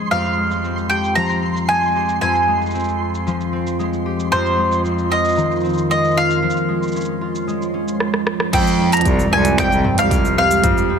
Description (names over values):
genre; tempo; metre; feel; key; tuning
folktronica; 114 BPM; 4/4; straight; F minor; A4 = 440 Hz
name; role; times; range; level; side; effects
warbly tape-like pad; sustained chords; 0.0-11.0 s; F3 to Db5; -24 LUFS; right 5 dB; chorus, built-in reverb
concert harp; arpeggios; 0.0-11.0 s; F2 to Ab4; -22 LUFS; left 3 dB; tape echo
flickering grainy texture; texture; 0.0-8.0 s; C6; -31 LUFS; right 4 dB; built-in reverb
bowl-back mandolin; melody; 0.1-11.0 s; C5 to Bb5; -18 LUFS; equal; tape echo
organic electronic drum kit; drums; 0.1-10.9 s; crash cymbal, finger snaps, hi-hat, rim click, shaker, toms; -26 LUFS; right 1 dB; low-pass filter on perc, low-pass filter on snare, low-pass filter on hats, low-pass filter on cymbals, low-pass filter on toms, low-pass filter on room
rich cello; bass; 8.5-10.6 s; C2 to F2; -19 LUFS; right 1 dB; none
electronic kick drum; drums; 8.5-10.7 s; none; -21 LUFS; equal; none
room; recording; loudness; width
light reverb; none; -15 LUFS; side -6 dB against mid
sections
0.0-8.5 A section; 8.5-11.0 B section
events
filter sweep on ambient pad 0.0-8.5; drum fill 8.0-8.5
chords
0.1 Fmadd9; 4.3 Ab6/F; 6.4 Db/F; 8.5 Fmadd9